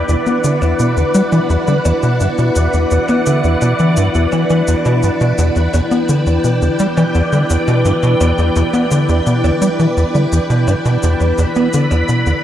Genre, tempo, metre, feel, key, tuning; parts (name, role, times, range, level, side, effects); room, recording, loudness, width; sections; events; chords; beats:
ambient, sequencer-driven space music; 85 BPM; 4/4; straight; E minor; A4 = 440 Hz
string machine, full ensemble; sustained chords; 0.0-12.4 s; E4 to B5; -16 LUFS; equal; ensemble chorus
tight sequencer bass; riff; 0.0-12.3 s; E2 to B3; -14 LUFS; equal; analog chorus, analog delay
shaker and percussion blips; percussion; 0.1-12.4 s; -29 LUFS; left 2 dB; analog delay
wet spring reverb, RT60 2.7 s; echo-heavy mix; -12 LUFS; side -11 dB against mid
0.0-12.4 A section
0.0 Em7
0.44 1.15 | 1.85 2.56 3.27 3.97 | 4.68 5.38 6.09 6.80 | 7.50 8.21 8.91 9.62 | 10.32 11.03 11.74